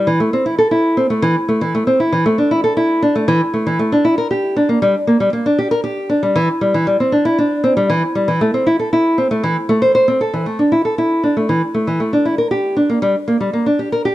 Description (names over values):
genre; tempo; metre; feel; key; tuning
folktronica; 117 BPM; 4/4; straight; G dorian; A4 = 440 Hz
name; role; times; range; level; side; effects
nylon-string guitar; solo; 0.0-14.1 s; E3 to C5; -13 LUFS; equal; none
room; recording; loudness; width
moderate studio reverb, RT60 0.6 s; none; -13 LUFS; side -15 dB against mid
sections
0.0-10.3 A section; 10.3-14.1 B section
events
none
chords
none